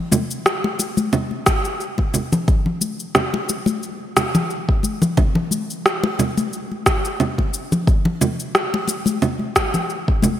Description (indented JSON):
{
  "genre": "downtempo",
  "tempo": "89 BPM",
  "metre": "4/4",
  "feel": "swing 55% on 16ths",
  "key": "none",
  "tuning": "none",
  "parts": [
    { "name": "electronic congas, shaker and rim click", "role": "drums", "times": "0.1-10.4 s", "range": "none", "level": "-20 LUFS", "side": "right 1 dB", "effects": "small room ambience, gated reverb" },
    { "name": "congas", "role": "percussion", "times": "0.1-10.4 s", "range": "none", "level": "-23 LUFS", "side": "left 3 dB", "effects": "none" },
    { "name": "electronic kick drum", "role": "drums", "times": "1.5-10.2 s", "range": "none", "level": "-18 LUFS", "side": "equal", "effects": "small room ambience" }
  ],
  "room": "moderate lush hall reverb, RT60 2.9 s",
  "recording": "bright 1980s-style digital production",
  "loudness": "-18 LUFS",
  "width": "side -11 dB against mid",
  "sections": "0.0-10.4 A section",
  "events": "none",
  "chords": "none"
}